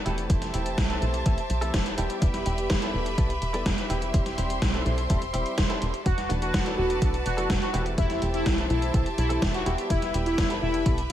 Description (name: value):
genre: italo disco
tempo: 125 BPM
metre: 4/4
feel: straight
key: unclear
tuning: A4 = 441 Hz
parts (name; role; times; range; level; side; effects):
- bright symphonic string section; sustained chords; 0.0-11.1 s; F#4 to C6; -32 LUFS; equal; none
- direct-recorded clean electric guitar; stabs; 0.1-11.0 s; E3 to A4; -33 LUFS; right 1 dB; ensemble chorus, ping-pong delay
- tight sequencer bass; bass; 0.1-11.1 s; E1 to B1; -29 LUFS; equal; none
- gated 80s digital drum machine; drums; 0.1-11.1 s; hi-hat, snare drum; -31 LUFS; equal; gated reverb, gated reverb snare
- electronic kick drum; drums; 0.3-11.0 s; none; -26 LUFS; equal; none
- analog synth brass; melody; 6.1-11.1 s; E4 to F#4; -29 LUFS; left 1 dB; chorus, phaser, ping-pong delay
room: light reverb, digital ambience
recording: vinyl crackle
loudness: -23 LUFS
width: side -11 dB against mid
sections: 0.0-11.1 A section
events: none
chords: 0.3 Am7/E; 6.1 Bm7/E; 8.0 Am7/E